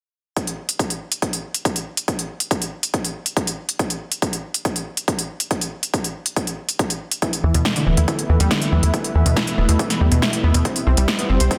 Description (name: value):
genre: uplifting trance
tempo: 140 BPM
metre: 4/4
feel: straight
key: unclear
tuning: A4 = 440 Hz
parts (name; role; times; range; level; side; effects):
- big-room dance drum kit; drums; 0.4-11.6 s; hi-hat, snare drum; -25 LUFS; equal; none
- electronic kick drum; drums; 0.4-11.6 s; none; -26 LUFS; equal; high-pass filter on kick, high-pass filter on room
- lush unison pad; sustained chords; 7.5-11.6 s; G3 to E5; -28 LUFS; equal; chorus, phaser, sidechain pumping
- analog pluck; arpeggios; 7.2-11.6 s; B2 to C5; -26 LUFS; equal; chorus, sidechain pumping, tape echo
- tight sequencer bass; bass; 7.4-11.5 s; E1 to E2; -18 LUFS; equal; sidechain pumping
room: light reverb, digital ambience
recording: dense, heavily limited modern master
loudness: -21 LUFS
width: mono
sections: 0.4-11.6 A section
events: none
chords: 0.4 N.C.; 7.2 Esus4; 10.7 C